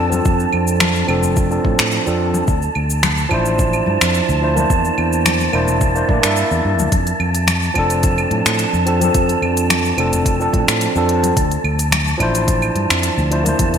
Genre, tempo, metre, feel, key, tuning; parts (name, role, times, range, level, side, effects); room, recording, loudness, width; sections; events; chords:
sunset chillout; 108 BPM; 4/4; straight; F major; A4 = 441 Hz
overdriven tine electric piano; accompaniment; 0.0-13.8 s; F3 to E5; -19 LUFS; right 1 dB; auto-pan, low-pass filter, ping-pong delay
fretless electric bass; bass; 0.0-13.8 s; E1 to A2; -20 LUFS; equal
wind-like tuned noise texture; texture; 0.0-13.8 s; A5; -23 LUFS; right 1 dB; built-in reverb
smooth R&B drum kit; drums; 0.1-13.8 s; cabasa, claves, finger snaps, hi-hat; -20 LUFS; equal; overdrive, studio ambience, gated reverb
congas; percussion; 0.1-13.8 s; -28 LUFS; left 3 dB
electronic kick drum; drums; 0.3-13.7 s; -19 LUFS; equal; overdrive, studio ambience
moderate lush hall reverb, RT60 1.8 s, digital ambience; bright 1980s-style digital production; -14 LUFS; side -8 dB against mid
0.0-13.8 A section
filter sweep on tine electric piano 0.0-13.8
0.0 F6; 2.5 Dm9; 4.7 C9/E; 6.9 F6; 11.4 Dm9